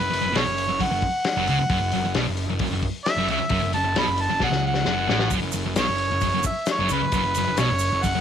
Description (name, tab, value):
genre	garage rock duo or trio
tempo	133 BPM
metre	4/4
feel	straight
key	F# minor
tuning	A4 = 440 Hz
part	clear harmonica	melody	0.0-8.2 s	B4 to B5	-24 LUFS	right 1 dB	overdrive
part	thick fuzz guitar	riff	0.0-8.2 s	F#2 to C#3	-24 LUFS	right 1 dB	distortion
part	fuzz picked electric bass	bass	0.0-8.2 s	F#1 to C#2	-31 LUFS	equal	overdrive
part	vintage drum kit	drums	0.1-8.1 s	hi-hat, kick drum, snare drum	-28 LUFS	left 4 dB	none
part	tube shaker	percussion	5.3-8.1 s	none	-34 LUFS	right 16 dB	none
room	light reverb, small room ambience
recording	1960s-style stereo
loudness	-20 LUFS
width	side -8 dB against mid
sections	0.0-8.2 A section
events	drum fill 4.4-5.3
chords	0.0 F#5